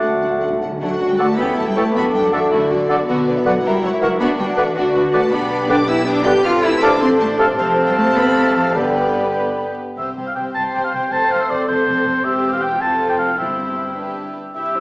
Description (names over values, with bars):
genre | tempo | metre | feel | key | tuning
quick classical-period movement for symphony orchestra | 106 BPM (dotted quarters) | 6/8 | rubato | D major, C major from 5.3 s | A4 = 440 Hz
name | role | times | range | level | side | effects
warm studio violin section | melody | 0.0-14.8 s | B4 to G6 | -29 LUFS | left 1 dB | none
mellow clarinet | second line | 0.0-9.8 s | D4 to B4 | -26 LUFS | equal | none
silver concert flute | second line | 0.0-9.8 s | F#5 to B5 | -25 LUFS | equal | none
warm oboe | second line | 0.0-14.8 s | D4 to A5 | -22 LUFS | equal | none
warm studio violin section | second line | 0.0-14.8 s | A3 to E5 | -24 LUFS | equal | none
mellow bassoon | accompaniment | 0.0-9.8 s | C3 to A3 | -24 LUFS | equal | none
warm studio viola section | accompaniment | 0.0-14.8 s | A3 to C5 | -23 LUFS | equal | none
mellow French horn section | sustained chords | 0.0-9.8 s | D4 to C5 | -22 LUFS | left 1 dB | none
warm studio cello section | bass | 0.0-14.8 s | E2 to G4 | -22 LUFS | equal | none
warm studio double bass section | bass | 0.0-14.8 s | E1 to F#2 | -32 LUFS | equal | none
timpani | percussion | 0.0-0.8, 13.4-13.9 s | G2 to D3 | -31 LUFS | equal | none
room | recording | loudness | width
wet scoring stage reverb, RT60 1.7 s | recorded in a church or concert hall, vinyl crackle, small speaker sound | -15 LUFS | side -25 dB against mid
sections
0.8-10.0 A section; 10.0-14.8 B section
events
timpani fill 0.0-0.8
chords
0.0 D; 1.4 A7; 2.0 D/F#; 3.1 Bm; 3.6 F#7; 4.2 Bm/D; 5.3 G/B; 6.4 F/A; 7.6 F; 8.8 G; 10.0 C5; 11.1 F; 12.2 C/E; 12.8 F; 13.4 C/G